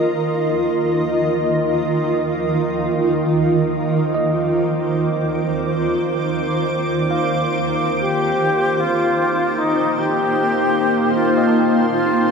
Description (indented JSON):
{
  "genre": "ambient",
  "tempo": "free time",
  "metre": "none",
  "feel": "none",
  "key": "unclear",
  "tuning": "A4 = 440 Hz",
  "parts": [
    { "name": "granular cloud pad", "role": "sustained chords", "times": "0.0-12.3 s", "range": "Eb3 to D6", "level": "-18 LUFS", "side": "right 1 dB", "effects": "built-in reverb" },
    { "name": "bright tine electric piano", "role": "arpeggios", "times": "0.0-12.3 s", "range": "Eb5 to A5", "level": "-30 LUFS", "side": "moving between left 5 dB and right 4 dB", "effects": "auto-pan, diffuse ambient delay" },
    { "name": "organ-like drone", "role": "drone", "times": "0.0-12.3 s", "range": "Eb3 to Bb3", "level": "-31 LUFS", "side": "left 1 dB", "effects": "ensemble chorus, built-in reverb" },
    { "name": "bright reedy alto flute", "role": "melody", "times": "8.0-12.3 s", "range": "Eb4 to G4", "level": "-18 LUFS", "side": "left 1 dB", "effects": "diffuse ambient delay" }
  ],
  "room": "wet cathedral reverb, RT60 6.7 s",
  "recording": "dreamy mix soaked in reverb",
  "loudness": "-16 LUFS",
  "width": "side -5 dB against mid",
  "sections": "0.0-12.3 A section",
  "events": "fade-in on synth drone 0.0-12.3; fade-out on tine electric piano 0.0-12.3",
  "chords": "0.0 F7sus4/Eb; 8.0 Eb69"
}